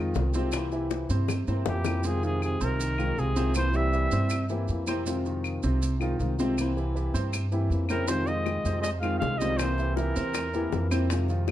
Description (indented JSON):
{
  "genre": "latin, Cuban son and guajira",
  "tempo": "159 BPM",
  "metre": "4/4",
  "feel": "straight",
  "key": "F minor",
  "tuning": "A4 = 440 Hz",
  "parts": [
    { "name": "flamenco guitar", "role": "accompaniment", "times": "0.0-11.5 s", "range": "C3 to F4", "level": "-33 LUFS", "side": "left 4 dB", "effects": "none" },
    { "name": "warm grand piano", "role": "arpeggios", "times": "0.0-11.5 s", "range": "C3 to C5", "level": "-33 LUFS", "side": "right 3 dB", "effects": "none" },
    { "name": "upright bass", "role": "bass", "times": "0.0-11.5 s", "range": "C2 to G2", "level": "-28 LUFS", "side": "equal", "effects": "none" },
    { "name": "maracas", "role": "percussion", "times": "0.1-11.5 s", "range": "none", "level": "-42 LUFS", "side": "right 7 dB", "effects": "none" },
    { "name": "bongos", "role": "percussion", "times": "0.2-1.9, 8.1-11.5 s", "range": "none", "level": "-34 LUFS", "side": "left 8 dB", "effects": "none" },
    { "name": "claves", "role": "percussion", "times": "0.5-11.5 s", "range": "none", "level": "-39 LUFS", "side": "left 6 dB", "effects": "none" },
    { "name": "breathy trumpet", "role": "melody", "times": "1.7-4.5, 7.9-10.9 s", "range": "G4 to F5", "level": "-31 LUFS", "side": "equal", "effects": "plate reverb" },
    { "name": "warm trombone", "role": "second line", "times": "1.7-4.5, 7.9-10.9 s", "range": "Bb2 to Ab3", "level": "-36 LUFS", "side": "right 4 dB", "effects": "none" }
  ],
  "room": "light reverb",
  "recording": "dark, warm production",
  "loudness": "-25 LUFS",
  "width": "side -13 dB against mid",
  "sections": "0.0-2.0 A section; 2.0-11.5 B section",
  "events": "drum fill 0.9-2.0",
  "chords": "0.0 Fm7; 0.5 C7; 2.0 Fm7; 3.5 C7; 5.1 Fm7; 6.6 C7; 8.1 Fm7; 9.6 C7",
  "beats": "0.15 | 0.53 0.91 1.29 1.66 | 2.04 2.42 2.79 3.17 | 3.55 3.93 4.30 4.68 | 5.06 5.44 5.82 6.19 | 6.57 6.95 7.33 7.70 | 8.08 8.46 8.84 9.21 | 9.59 9.97 10.35 10.73 | 11.10 11.48"
}